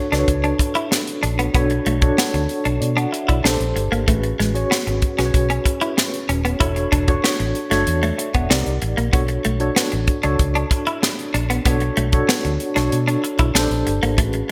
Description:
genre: polished 1980s jazz-funk pop.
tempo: 95 BPM.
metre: 4/4.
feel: straight.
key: B dorian.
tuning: A4 = 440 Hz.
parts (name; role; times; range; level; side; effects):
mellow tine electric piano; accompaniment; 0.0-14.5 s; C#4 to F#5; -25 LUFS; equal; medium tremolo, lush chorus.
clean electric guitar; riff; 0.1-14.4 s; G#3 to E4; -27 LUFS; equal; lush chorus.
vintage muted fingered electric bass; bass; 0.1-14.4 s; D#1 to B2; -24 LUFS; equal; none.
tight funk drum kit; drums; 0.1-14.5 s; hi-hat, kick drum, snare drum; -23 LUFS; equal; gated reverb.
room: moderate plate reverb, RT60 1.8 s, studio reverb.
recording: bright 1980s-style digital production.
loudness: -19 LUFS.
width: mono.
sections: 0.0-14.5 A section.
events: none.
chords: 0.0 Bm9; 3.4 A#maj13; 4.1 Amaj13; 6.6 E13sus4; 8.5 Cm9; 9.1 Bm9; 13.5 A#maj13.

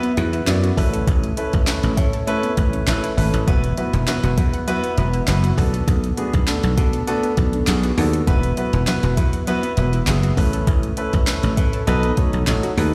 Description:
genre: dance-pop.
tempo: 100 BPM.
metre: 4/4.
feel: straight.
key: unclear.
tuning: A4 = 439 Hz.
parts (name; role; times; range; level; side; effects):
warm grand piano; accompaniment; 0.0-12.9 s; B3 to D5; -26 LUFS; equal; sidechain pumping.
unison pluck; arpeggios; 0.0-12.9 s; F#3 to F#5; -32 LUFS; equal; sidechain pumping, dub echo.
smooth R&B drum kit; drums; 0.0-12.9 s; handclaps, hi-hat, kick drum, snare drum; -23 LUFS; equal; overdrive.
dry thumbed slap bass; bass; 0.2-12.9 s; E1 to B2; -22 LUFS; equal; sidechain pumping.
room: light reverb.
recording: played on a big sound system in a bare room, large studio reverb.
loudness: -19 LUFS.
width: mono.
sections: 0.0-12.9 A section.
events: none.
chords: 0.0 Esus2; 0.8 Aadd9; 3.5 Esus2; 5.6 Bm7; 8.3 Esus2; 10.4 Aadd9; 11.9 B7.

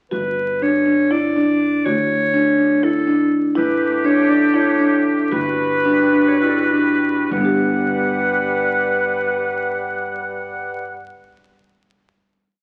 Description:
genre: contemporary instrumental, chamber music in an uneven meter.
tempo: 192-247 BPM (eighths).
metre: 7/8.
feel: straight.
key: G lydian.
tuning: A4 = 440 Hz.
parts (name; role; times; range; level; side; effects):
clear clarinet; melody; 0.1-11.1 s; A4 to D5; -24 LUFS; equal; none.
marimba with soft mallets; arpeggios; 0.1-11.2 s; G3 to G4; -20 LUFS; equal; none.
upright bass; bass; 0.1-11.1 s; G1 to D2; -35 LUFS; equal; none.
clear woodwind section; sustained chords; 3.6-11.1 s; G3 to F#5; -23 LUFS; equal; none.
room: wet recital hall reverb, RT60 1.4 s.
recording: very old 78 rpm record, vinyl crackle.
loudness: -18 LUFS.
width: mono.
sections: 0.1-7.3 A section; 7.3-11.7 final chord.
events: slowing down 3.6-7.3.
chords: 0.1 Gmaj7; 1.9 Dmaj7; 3.6 A7sus4; 5.3 Gmaj7.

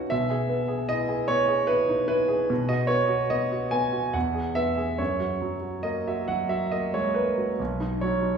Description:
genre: classical, romantic character piece for solo piano.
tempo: 68-76 BPM.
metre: 3/4.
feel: rubato.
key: B major.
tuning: A4 = 440 Hz.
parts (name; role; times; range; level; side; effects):
clear concert grand piano; solo; 0.0-8.4 s; B1 to G#5; -23 LUFS; right 1 dB; none.
room: wet recital hall reverb, RT60 1.6 s.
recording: heard from further back in the room, small room ambience.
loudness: -23 LUFS.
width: side -6 dB against mid.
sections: 0.0-8.4 A section.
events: none.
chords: 0.1 E/B; 2.5 B5; 4.1 E; 5.0 F#; 7.6 B.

